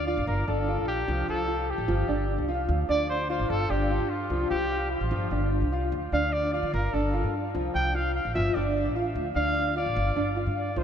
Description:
latin, Cuban son and guajira; 149 BPM; 4/4; straight; A4 = 440 Hz
clear trumpet; melody; 0.0-10.8 s; F4 to G5; -30 LUFS; equal; ping-pong delay
upright bass; bass; 0.0-10.8 s; G1 to D3; -29 LUFS; equal
warm concert grand piano; arpeggios; 0.1-10.8 s; F3 to F5; -29 LUFS; equal; ensemble chorus
wet cathedral reverb, RT60 6.1 s; dreamy mix soaked in reverb; -25 LUFS; side -8 dB against mid
0.0-10.8 A section
0.3 Gm7; 1.1 Csus4; 1.9 G5; 2.7 Dm; 3.5 G5; 4.3 Csus4; 5.1 G5; 5.9 Dm; 6.7 G5; 7.5 Csus4; 8.3 G5; 9.2 Dm; 10.0 G5
0.27 0.67 | 1.08 1.48 1.89 2.29 | 2.69 3.10 3.50 3.90 | 4.31 4.71 5.12 5.52 | 5.92 6.33 6.73 7.13 | 7.54 7.94 8.35 8.75 | 9.15 9.56 9.96 10.36 | 10.77

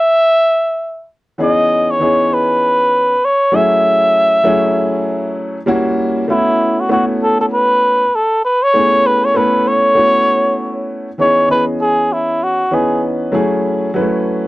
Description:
hip hop; 98 BPM; 4/4; swing 59% on 16ths; C# minor; A4 = 441 Hz
trumpet with cup mute; melody; 0.0-13.0 s; E4 to E5; -12 LUFS; equal
warm upright piano; accompaniment; 1.4-14.5 s; E3 to D#5; -16 LUFS; equal
light reverb; dry, close 1970s-style studio recording; -12 LUFS; side -18 dB against mid
0.0-11.2 A section; 11.2-14.5 B section
break 0.0-1.4; muted trumpet solo 11.2-14.5
0.0 N.C.; 1.4 C#m9; 3.5 F#m9; 5.7 F#7b9; 6.3 B7sus4; 8.7 Amaj9; 10.0 B9sus4; 11.2 C#m9; 13.3 F#m9
0.17 0.78 | 1.40 2.01 2.62 3.23 | 3.84 4.46 5.07 5.68 | 6.29 6.91 7.52 8.13 | 8.74 9.35 9.97 10.58 | 11.19 11.80 12.41 13.03 | 13.64 14.25

